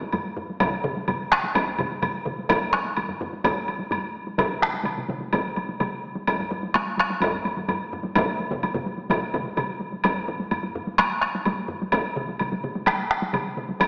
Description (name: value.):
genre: japanese traditional, taiko drum ensemble.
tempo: 127 BPM.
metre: 4/4.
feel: straight.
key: none.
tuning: none.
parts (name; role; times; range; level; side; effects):
taiko ensemble; percussion; 0.0-13.9 s; none; -30 LUFS; equal; none.
taiko ensemble; percussion; 0.0-13.9 s; none; -27 LUFS; equal; none.
woodblock; percussion; 0.1-13.9 s; none; -27 LUFS; equal; none.
taiko ensemble; percussion; 0.6-13.7 s; none; -28 LUFS; equal; none.
taiko ensemble; percussion; 0.6-13.9 s; none; -28 LUFS; equal; none.
room: wet scoring stage reverb, RT60 1.5 s.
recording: small speaker sound.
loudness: -23 LUFS.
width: side -32 dB against mid.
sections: 0.0-10.0 A section; 10.0-13.9 B section.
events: none.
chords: none.